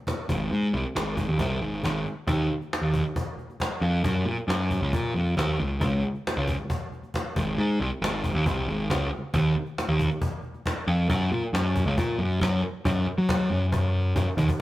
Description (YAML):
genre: indie rock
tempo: 136 BPM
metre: 4/4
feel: straight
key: unclear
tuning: A4 = 440 Hz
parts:
  - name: cajon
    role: drums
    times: 0.1-14.6 s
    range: none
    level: -30 LUFS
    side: equal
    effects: none
  - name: fuzz picked electric bass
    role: bass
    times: 0.3-14.5 s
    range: Ab1 to Gb3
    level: -24 LUFS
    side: equal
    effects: overdrive
room: moderate stone room reverb, RT60 1.1 s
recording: rough rehearsal-room recording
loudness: -24 LUFS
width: side -16 dB against mid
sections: 0.0-12.8 A section; 12.8-14.6 B section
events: drum fill 14.2-14.6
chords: none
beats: 0.07 | 0.51 0.95 1.40 1.84 | 2.28 2.72 3.16 3.60 | 4.04 4.49 4.93 5.37 | 5.81 6.25 6.69 7.13 | 7.58 8.02 8.46 8.90 | 9.34 9.78 10.22 10.66 | 11.10 11.53 11.97 12.41 | 12.85 13.29 13.72 14.16